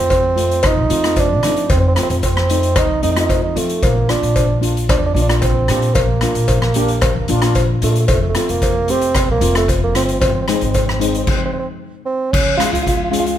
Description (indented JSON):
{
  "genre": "calypso",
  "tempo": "113 BPM",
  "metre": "4/4",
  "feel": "straight",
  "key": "F major",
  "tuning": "A4 = 440 Hz",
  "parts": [
    { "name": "dark bassoon", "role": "melody", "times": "0.0-13.3 s", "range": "A3 to F4", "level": "-19 LUFS", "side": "right 4 dB", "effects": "none" },
    { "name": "steel pan", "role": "accompaniment", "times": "0.0-13.4 s", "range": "Ab3 to G4", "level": "-22 LUFS", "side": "left 3 dB", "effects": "none" },
    { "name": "upright bass", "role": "bass", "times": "0.0-13.4 s", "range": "F1 to F3", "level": "-19 LUFS", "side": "equal", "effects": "none" },
    { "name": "street-band drum kit", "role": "drums", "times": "0.1-13.4 s", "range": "crash cymbal, hi-hat, kick drum, rim click", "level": "-19 LUFS", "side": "equal", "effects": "none" },
    { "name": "cowbell", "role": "percussion", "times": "0.1-10.9 s", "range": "none", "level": "-21 LUFS", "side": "left 4 dB", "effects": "none" }
  ],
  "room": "little or no reverb",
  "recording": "close, detailed microphones",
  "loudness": "-13 LUFS",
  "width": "side -11 dB against mid",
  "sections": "0.0-12.3 A section; 12.3-13.4 A section",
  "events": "stop 11.3-12.3",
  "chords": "0.0 F7; 3.8 Bb; 8.1 F; 10.2 Ab; 12.3 Db",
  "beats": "0.11 0.64 1.17 | 1.70 2.23 2.77 3.30 | 3.83 4.36 4.89 5.43 | 5.96 6.49 7.02 7.55 | 8.09 8.62 9.15 9.68 | 10.21 10.74 11.27 11.80 | 12.33 12.86"
}